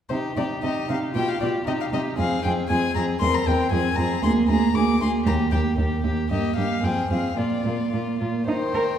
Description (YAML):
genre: quick classical-period movement for string quartet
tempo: 116 BPM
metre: 2/4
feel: straight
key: C minor, Eb major from 4.2 s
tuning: A4 = 440 Hz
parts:
  - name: warm violin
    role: melody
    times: 0.1-9.0 s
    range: C5 to D6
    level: -28 LUFS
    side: left 6 dB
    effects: none
  - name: rich violin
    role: second line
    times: 0.1-9.0 s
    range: F4 to C5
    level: -29 LUFS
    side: left 3 dB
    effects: none
  - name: dark viola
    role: accompaniment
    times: 0.1-9.0 s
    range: Eb3 to F4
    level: -26 LUFS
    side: right 1 dB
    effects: none
  - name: rich cello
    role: bass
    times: 0.1-8.8 s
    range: D2 to Bb4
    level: -25 LUFS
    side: right 2 dB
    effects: none
room: wet scoring stage reverb, RT60 2.0 s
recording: heard from further back in the room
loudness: -21 LUFS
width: side -9 dB against mid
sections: 0.1-8.5 A section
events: none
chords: 0.1 Cm; 1.2 G7; 1.7 Cm; 2.2 Fm; 3.2 C7/E; 3.7 Fm; 4.2 Bb7/D; 5.3 Eb; 6.8 Fm; 7.4 Bb; 8.5 Eb